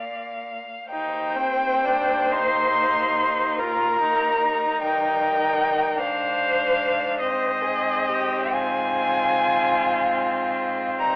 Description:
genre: classical, slow romantic movement for string quartet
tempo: 40-51 BPM (dotted quarters)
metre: 12/8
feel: rubato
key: Eb major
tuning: A4 = 440 Hz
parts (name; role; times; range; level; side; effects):
- rich violin; melody; 0.0-11.2 s; Eb5 to C6; -23 LUFS; left 1 dB; none
- warm violin; second line; 0.0-11.2 s; Eb4 to D5; -25 LUFS; equal; none
- rich cello; bass; 0.0-11.2 s; Eb2 to Bb2; -35 LUFS; equal; none
- rich viola; accompaniment; 0.9-11.2 s; C4 to F4; -26 LUFS; equal; none
room: wet recital hall reverb, RT60 1.7 s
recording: telephone sound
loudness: -20 LUFS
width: side -28 dB against mid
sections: 0.9-11.2 A section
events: none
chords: 0.0 Bb; 0.9 Eb; 6.0 Ab

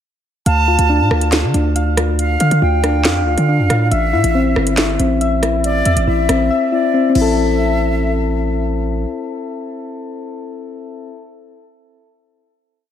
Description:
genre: hip hop, drill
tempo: 139 BPM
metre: 4/4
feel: half-time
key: A minor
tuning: A4 = 445 Hz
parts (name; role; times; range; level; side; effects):
- reedy silver concert flute; second line; 0.5-8.6 s; D5 to A5; -22 LUFS; right 2 dB; ping-pong delay
- soft electric-piano-like synth keys; arpeggios; 0.5-11.2 s; C4 to F5; -18 LUFS; left 4 dB; chorus, ping-pong delay
- distorted 808-style bass; bass; 0.5-9.1 s; G1 to D3; -17 LUFS; right 1 dB; distortion
- drill drum kit; drums; 0.5-7.3 s; crash cymbal, handclaps, hi-hat, rim click, snare drum; -20 LUFS; right 1 dB; none
room: moderate plate reverb, RT60 1.3 s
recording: dreamy mix soaked in reverb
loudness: -13 LUFS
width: side -9 dB against mid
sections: 0.5-7.4 hook; 7.4-10.8 final hit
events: drums muted 6.5-7.4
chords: 0.5 Dm; 3.9 Am

